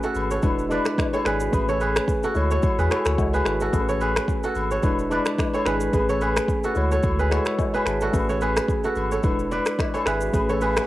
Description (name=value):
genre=afrobeats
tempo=109 BPM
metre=4/4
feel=swing 55% on 16ths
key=A major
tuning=A4 = 441 Hz
part: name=tine electric piano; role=accompaniment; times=0.0-10.9 s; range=G#3 to C#6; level=-26 LUFS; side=left 2 dB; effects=medium stereo tremolo, cassette tape
part: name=kora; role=riff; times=0.0-10.9 s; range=F#4 to D5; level=-25 LUFS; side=right 2 dB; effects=cassette tape, tape echo
part: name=afro-pop drum kit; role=drums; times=0.0-10.9 s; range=finger snaps, kick drum, rim click, shaker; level=-25 LUFS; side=equal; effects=overdrive, cassette tape
part: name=warm sub bass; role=bass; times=0.2-10.8 s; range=E1 to E2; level=-27 LUFS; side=equal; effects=none
part: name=agogo bells and woodblock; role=percussion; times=0.2-10.8 s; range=none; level=-32 LUFS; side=left 4 dB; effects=none
part: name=noise sweep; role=sound effects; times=10.6-10.9 s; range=none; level=-38 LUFS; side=right 2 dB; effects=none
room=light reverb, digital ambience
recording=home recording on cassette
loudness=-20 LUFS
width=side -16 dB against mid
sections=0.0-10.9 A section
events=tine electric piano fill 2.6-3.7; noise sweep 10.6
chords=0.4 E7; 1.5 Amaj9; 2.4 Dmaj9#11; 3.7 Amaj9; 4.8 E7; 5.9 Amaj9; 6.8 Dmaj9#11; 8.1 Amaj9; 9.2 E7; 10.3 Amaj9